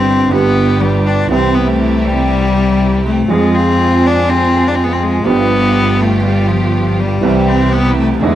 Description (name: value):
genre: tango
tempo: 121 BPM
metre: 4/4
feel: rubato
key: C major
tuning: A4 = 439 Hz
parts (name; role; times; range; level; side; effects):
- clear cello; second line; 0.0-8.3 s; F3 to D4; -14 LUFS; left 4 dB; none
- clear baby grand piano; accompaniment; 0.0-8.3 s; G1 to Ab4; -16 LUFS; right 4 dB; none
- rich studio string section; stabs; 0.0-8.3 s; B3 to Ab4; -21 LUFS; right 2 dB; none
- warm double bass; bass; 0.0-8.3 s; G1 to F2; -16 LUFS; right 1 dB; none
room: small room ambience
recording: dry, close 1970s-style studio recording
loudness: -10 LUFS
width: side -12 dB against mid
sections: 0.0-8.3 A section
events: cello solo 0.0-8.3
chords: 0.3 G; 1.3 C; 3.3 Fm; 5.3 G7; 7.2 C